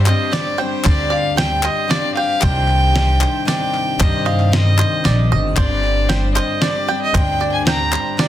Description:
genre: indie folk with a building arrangement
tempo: 115 BPM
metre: 3/4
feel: straight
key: C minor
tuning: A4 = 441 Hz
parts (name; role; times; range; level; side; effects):
- warm fiddle; melody; 0.0-8.2 s; C5 to Bb5; -20 LUFS; equal; none
- picked twelve-string acoustic guitar; accompaniment; 0.0-8.3 s; G2 to G4; -25 LUFS; left 9 dB; none
- warm upright piano; accompaniment; 0.0-8.3 s; G1 to F5; -28 LUFS; right 5 dB; none
- bluegrass banjo; arpeggios; 0.0-8.3 s; C5 to G5; -24 LUFS; right 7 dB; none
- upright bass; bass; 0.0-7.9 s; G1 to G2; -18 LUFS; equal; none
- group handclap; percussion; 0.1-8.3 s; none; -26 LUFS; left 6 dB; none
- dusty soul sampler-style drum kit; drums; 0.3-8.3 s; hi-hat, kick drum, snare drum; -18 LUFS; equal; none
room: light reverb, small room ambience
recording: dense, heavily limited modern master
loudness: -14 LUFS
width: side -12 dB against mid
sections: 0.0-8.3 A section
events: none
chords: 0.0 Gsus4; 2.4 Cmadd9; 5.6 Gsus4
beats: 0.33 | 0.86 1.38 1.90 | 2.43 2.95 3.48 | 4.00 4.52 5.05 | 5.57 6.09 6.62 | 7.14 7.67 8.19

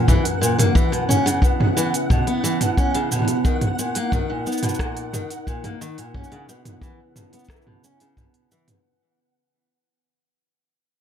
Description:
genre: folktronica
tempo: 89 BPM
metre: 4/4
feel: straight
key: C# dorian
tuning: A4 = 441 Hz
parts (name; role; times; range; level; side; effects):
- warbly tape-like pad; sustained chords; 0.0-8.8 s; F#2 to A#4; -27 LUFS; equal; chorus, built-in reverb
- picked steel-string acoustic guitar; arpeggios; 0.0-8.7 s; A#2 to C#4; -24 LUFS; left 1 dB; low-pass filter, ping-pong delay
- flickering grainy texture; texture; 0.0-8.9 s; F#5; -30 LUFS; right 4 dB; built-in reverb
- kick drum; drums; 0.1-8.3 s; none; -20 LUFS; equal; none
- organic electronic drum kit; drums; 0.1-8.8 s; cabasa, hi-hat, rim click, toms; -23 LUFS; right 1 dB; overdrive
room: moderate studio reverb, RT60 0.7 s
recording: none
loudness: -18 LUFS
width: side -9 dB against mid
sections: 0.0-8.8 A section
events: fade-out 0.0-8.8; filter sweep on steel-string acoustic guitar 0.0-8.8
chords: 0.0 F#7; 0.8 C#m7; 3.5 Bmaj7 (rootless); 6.1 C#m7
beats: 0.08 | 0.75 1.43 2.10 2.78 | 3.45 4.12 4.80 5.47 | 6.15 6.82 7.50 8.17

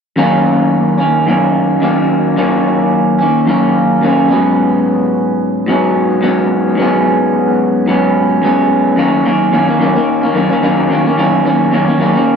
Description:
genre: indie pop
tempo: 109 BPM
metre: 4/4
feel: swing 55% on 16ths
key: F# major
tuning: A4 = 440 Hz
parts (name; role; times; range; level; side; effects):
- electric guitar through a small old amp; solo; 0.2-12.4 s; F#2 to C#4; -10 LUFS; equal; wide subtle chorus, warbly pitch drift
room: light reverb, digital ambience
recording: worn, warbling old tape, cassette tape, warbly pitch drift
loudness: -10 LUFS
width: side -6 dB against mid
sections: 0.2-9.0 A section; 9.0-12.4 B section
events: none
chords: 0.2 F#6; 4.3 G#m7; 9.0 F#6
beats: | 0.17 0.72 1.27 1.82 | 2.37 2.92 3.47 4.02 | 4.57 5.12 5.67 6.22 | 6.77 7.32 7.87 8.43 | 8.97 9.53 10.08 10.63 | 11.18 11.73 12.28

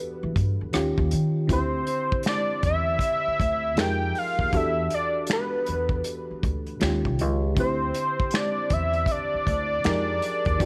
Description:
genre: R&B, neo-soul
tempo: 79 BPM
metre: 4/4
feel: swing 64% on 16ths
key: unclear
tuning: A4 = 440 Hz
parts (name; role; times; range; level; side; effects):
- fat analog lead; melody; 0.0-10.7 s; B4 to G5; -28 LUFS; equal; chorus
- FM electric piano; accompaniment; 0.0-10.7 s; D3 to C5; -33 LUFS; equal; chorus
- upright bass; bass; 0.2-10.7 s; C2 to E3; -30 LUFS; equal; none
- unplugged drum kit; drums; 0.4-10.7 s; finger snaps, hi-hat, kick drum, rim click, snare drum; -30 LUFS; equal; none
room: light reverb, studio ambience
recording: none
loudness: -25 LUFS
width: mono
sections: 0.0-10.7 A section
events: none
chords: 0.0 Em11; 0.7 D#9; 1.5 D9sus4; 3.8 Fm11; 4.5 Em11; 6.8 D#9; 7.6 D9sus4; 9.8 Fm11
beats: 0.73 | 1.49 2.25 3.01 3.77 | 4.53 5.29 6.05 6.81 | 7.57 8.33 9.09 9.85 | 10.61

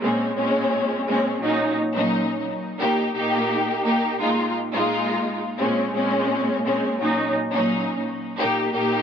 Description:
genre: hip hop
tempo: 86 BPM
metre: 4/4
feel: swing 55% on 16ths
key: Bb minor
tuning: A4 = 440 Hz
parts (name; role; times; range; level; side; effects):
- warm studio string section; solo; 0.0-9.0 s; Bb2 to G4; -20 LUFS; equal; high-pass filter, low-pass filter, tape echo
room: light reverb, small room ambience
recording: dark, warm production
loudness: -20 LUFS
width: side -8 dB against mid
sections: 0.0-9.0 A section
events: none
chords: 0.0 Bbm9; 1.4 Ebm7/Bb; 2.8 Eb/Bb; 4.2 Fm7/Bb; 5.6 Bbm9; 7.0 Ebm7/Bb; 8.4 Eb/Bb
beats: | 0.02 0.71 1.41 2.11 | 2.81 3.50 4.20 4.90 | 5.60 6.30 6.99 7.69 | 8.39

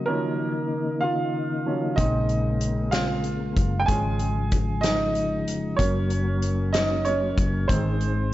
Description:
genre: six-eight pop ballad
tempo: 63 BPM (dotted quarters)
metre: 6/8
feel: straight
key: Db major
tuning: A4 = 444 Hz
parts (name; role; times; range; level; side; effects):
- mellow tonewheel organ; sustained chords; 0.0-8.3 s; Db3 to Eb4; -29 LUFS; left 2 dB; chorus vibrato, fast rotary speaker
- warm upright piano; accompaniment; 0.1-8.3 s; Db3 to Ab5; -26 LUFS; right 2 dB; none
- hollow-body short-scale fingered electric bass; bass; 2.0-8.3 s; F1 to Bb1; -26 LUFS; equal; none
- loose indie drum kit; drums; 2.0-8.2 s; hi-hat, kick drum, snare drum; -27 LUFS; left 1 dB; none
room: moderate concert hall reverb, RT60 2.1 s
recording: nothing above 7.7 kHz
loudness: -22 LUFS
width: side -15 dB against mid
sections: 0.0-8.3 A section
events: upright piano solo 0.0-8.3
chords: 0.0 Ebm7; 2.0 Bbm7; 3.9 Db/Ab; 5.8 Gb; 7.7 Ab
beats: | 0.08 1.03 | 1.98 2.93 | 3.88 4.84 | 5.79 6.74 | 7.70

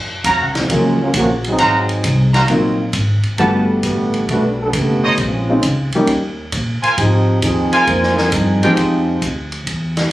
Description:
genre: jazz, big band swing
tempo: 134 BPM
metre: 4/4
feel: swing 68% on 8ths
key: unclear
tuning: A4 = 437 Hz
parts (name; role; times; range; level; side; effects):
- upright bass; bass; 0.0-10.1 s; F#1 to Bb2; -19 LUFS; equal; none
- clear trumpet section; stabs; 0.2-8.7 s; Eb4 to Bb5; -16 LUFS; right 1 dB; none
- vintage drum kit; drums; 0.2-10.0 s; hi-hat, kick drum, ride cymbal, snare drum; -23 LUFS; equal; none
- clear trombone section; second line; 0.6-9.2 s; Db3 to C5; -18 LUFS; right 1 dB; none
- warm baby grand piano; accompaniment; 0.7-9.2 s; F3 to F#5; -17 LUFS; left 1 dB; none
room: light reverb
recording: recorded on a phone in the room, club ambience, compression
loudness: -13 LUFS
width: side -16 dB against mid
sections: 0.0-10.1 A section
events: trombone section solo 0.0-10.1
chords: 0.0 Gbmaj7; 1.6 Ab13; 3.4 Gmaj9; 5.2 Bbm11; 6.1 Eb5; 7.0 Ab69; 8.8 Fm9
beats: 0.24 0.69 1.14 | 1.59 2.04 2.49 2.94 | 3.38 3.83 4.28 4.73 | 5.18 5.63 6.08 6.53 | 6.98 7.43 7.88 8.33 | 8.78 9.23 9.68

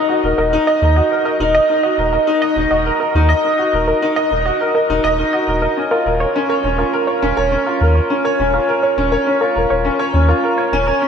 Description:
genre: piano and strings electronica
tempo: 103 BPM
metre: 4/4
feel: straight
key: unclear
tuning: A4 = 440 Hz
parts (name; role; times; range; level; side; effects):
- warm baby grand piano; riff; 0.0-11.1 s; Db4 to Eb5; -15 LUFS; equal; lush chorus, diffuse ambient delay, shimmer reverb
- analog pluck; arpeggios; 0.1-10.9 s; Bb4 to Eb5; -21 LUFS; right 1 dB; chorus, diffuse ambient delay, shimmer reverb
- warm sub bass; bass; 0.2-10.9 s; Eb1 to Eb2; -18 LUFS; equal; none
room: wet lush hall reverb, RT60 2.6 s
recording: dreamy mix soaked in reverb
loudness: -13 LUFS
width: side -7 dB against mid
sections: 0.0-11.1 A section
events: none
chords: 0.0 Ebm; 5.8 Bbm/Eb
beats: 0.53 | 1.11 1.69 2.28 2.86 | 3.44 4.02 4.61 5.19 | 5.77 6.35 6.94 7.52 | 8.10 8.68 9.27 9.85 | 10.43 11.01

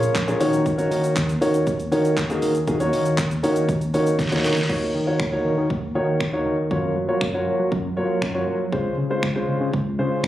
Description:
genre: dance-pop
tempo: 119 BPM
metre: 4/4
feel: straight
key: Eb dorian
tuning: A4 = 438 Hz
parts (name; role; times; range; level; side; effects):
- dark concert grand piano; accompaniment; 0.0-10.2 s; Ab3 to Db5; -22 LUFS; equal; sidechain pumping
- tine electric piano; bass; 0.0-10.3 s; Bb1 to Gb3; -24 LUFS; equal; medium stereo tremolo, sidechain pumping
- pop drum kit; drums; 0.0-10.3 s; crash cymbal, finger snaps, handclaps, hi-hat, kick drum, shaker, snare drum; -27 LUFS; equal; none
room: light reverb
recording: recorded on a phone in the room, club reverb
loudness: -19 LUFS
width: side -13 dB against mid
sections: 0.0-4.7 A section; 4.7-10.3 B section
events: drum fill 4.2-4.7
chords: 0.4 Ebm7; 6.7 Gbmaj7; 8.7 Dbmaj7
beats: 0.15 | 0.66 1.16 1.67 2.17 | 2.67 3.18 3.68 4.19 | 4.69 5.20 5.70 6.21 | 6.71 7.21 7.72 8.22 | 8.73 9.23 9.73 10.24

